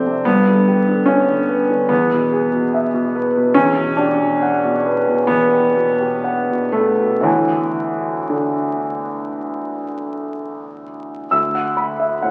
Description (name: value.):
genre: classical, impressionist solo piano.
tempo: 55-74 BPM.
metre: 4/4.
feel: rubato.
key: D major.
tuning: A4 = 437 Hz.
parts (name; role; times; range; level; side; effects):
warm concert grand piano; solo; 0.0-12.3 s; D2 to E6; -18 LUFS; equal; none.
room: wet recital hall reverb, RT60 1.6 s.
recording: very old 78 rpm record, vinyl crackle.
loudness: -18 LUFS.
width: mono.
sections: 0.0-11.3 A section.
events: none.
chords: 0.3 G; 1.9 E; 3.6 Em9; 7.3 Dmaj7; 11.3 D69.